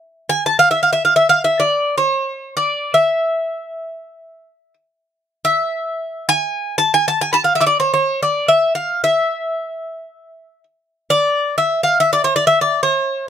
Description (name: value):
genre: Turkish makam ensemble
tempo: free time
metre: none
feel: none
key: E makam hicaz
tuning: A4 = 438 Hz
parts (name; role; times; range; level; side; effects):
- Greek bouzouki; solo; 0.3-13.3 s; C#5-40c to B5; -14 LUFS; equal; none
room: light reverb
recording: close, detailed microphones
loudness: -14 LUFS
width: side -9 dB against mid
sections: 0.1-13.3 A section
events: none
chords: none